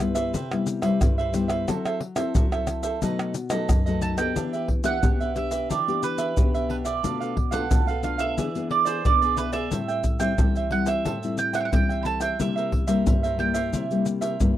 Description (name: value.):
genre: samba and choro.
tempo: 90 BPM.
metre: 4/4.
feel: straight.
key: E minor.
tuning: A4 = 442 Hz.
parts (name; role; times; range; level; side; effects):
cavaquinho; accompaniment; 0.0-14.6 s; D4 to G5; -29 LUFS; right 5 dB; none.
nylon-string guitar; accompaniment; 0.0-14.6 s; F#2 to A4; -27 LUFS; left 4 dB; none.
maracas, pandeiro, tamborim and surdo; percussion; 0.0-14.6 s; none; -25 LUFS; equal; none.
mandolin; melody; 4.0-14.6 s; B4 to B5; -27 LUFS; right 8 dB; none.
room: light reverb.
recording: dry, close 1970s-style studio recording.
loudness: -22 LUFS.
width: side -12 dB against mid.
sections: 0.0-4.4 A section; 4.4-14.6 B section.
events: none.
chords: 0.0 Cmaj7; 1.7 F#m7b5; 3.0 B7; 4.4 Em7; 7.0 Bm7b5; 8.4 E7; 9.7 Am7; 12.4 C7.